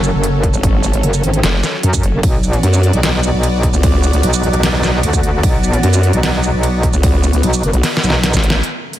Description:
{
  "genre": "heavy wobble dubstep",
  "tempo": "150 BPM",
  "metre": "4/4",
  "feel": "half-time",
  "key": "unclear",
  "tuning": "A4 = 440 Hz",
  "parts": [
    { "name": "supersaw pad", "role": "sustained chords", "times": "0.0-9.0 s", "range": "F#2 to D5", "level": "-21 LUFS", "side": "equal", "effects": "phaser, sidechain pumping, low-pass filter" },
    { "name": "metallic wobble bass", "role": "bass", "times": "0.0-8.3 s", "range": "F#1 to F#2", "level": "-15 LUFS", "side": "equal", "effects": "chorus, overdrive" },
    { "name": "dubstep drum kit", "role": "drums", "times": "0.0-9.0 s", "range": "hi-hat, ride cymbal, shaker, snare drum", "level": "-19 LUFS", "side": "right 1 dB", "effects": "none" },
    { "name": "electronic kick drum", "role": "drums", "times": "0.4-8.4 s", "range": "none", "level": "-16 LUFS", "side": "equal", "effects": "none" },
    { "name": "vowel-sweep wobble bass", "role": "bass", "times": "0.5-8.6 s", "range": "F#1 to F#2", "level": "-13 LUFS", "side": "equal", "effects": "chorus, overdrive" }
  ],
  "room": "little or no reverb",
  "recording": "none",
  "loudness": "-12 LUFS",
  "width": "side -13 dB against mid",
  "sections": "0.0-8.6 A section",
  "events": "drop 0.0-8.6; drum fill 7.8-8.6; band accent 8.5",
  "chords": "0.0 F#m; 2.2 Bm"
}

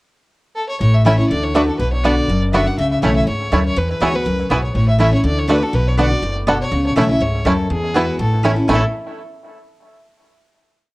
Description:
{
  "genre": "bluegrass",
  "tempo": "244 BPM",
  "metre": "4/4",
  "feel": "swing 53% on 8ths",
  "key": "A major",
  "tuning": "A4 = 441 Hz",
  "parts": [
    { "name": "clear fiddle", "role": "melody", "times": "0.6-8.8 s", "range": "E4 to F#5", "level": "-22 LUFS", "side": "equal", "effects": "analog delay" },
    { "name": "picked steel-string acoustic guitar", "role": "accompaniment", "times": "0.8-8.8 s", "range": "E2 to F#4", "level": "-19 LUFS", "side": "left 1 dB", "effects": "none" },
    { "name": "upright bass", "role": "bass", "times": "0.8-8.8 s", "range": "F#1 to E2", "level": "-19 LUFS", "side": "equal", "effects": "none" },
    { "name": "bluegrass banjo", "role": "arpeggios", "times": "1.1-8.8 s", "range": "A3 to A4", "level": "-21 LUFS", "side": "right 1 dB", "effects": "none" },
    { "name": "mandolin", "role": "stabs", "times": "1.1-8.8 s", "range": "A3 to B5", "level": "-24 LUFS", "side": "right 3 dB", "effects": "plate reverb" }
  ],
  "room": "light reverb",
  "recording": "worn, warbling old tape, cassette tape, warbly pitch drift",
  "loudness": "-14 LUFS",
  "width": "side -21 dB against mid",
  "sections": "0.0-0.8 pickup bar; 0.8-8.7 A section; 8.7-9.7 final chord",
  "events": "none",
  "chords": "0.0 N.C.; 0.8 A; 1.3 D; 1.8 Bm; 2.8 A; 3.8 Eadd9; 4.8 A; 5.2 D; 5.7 Bm; 6.7 A; 7.7 Eadd9; 8.2 Aadd9"
}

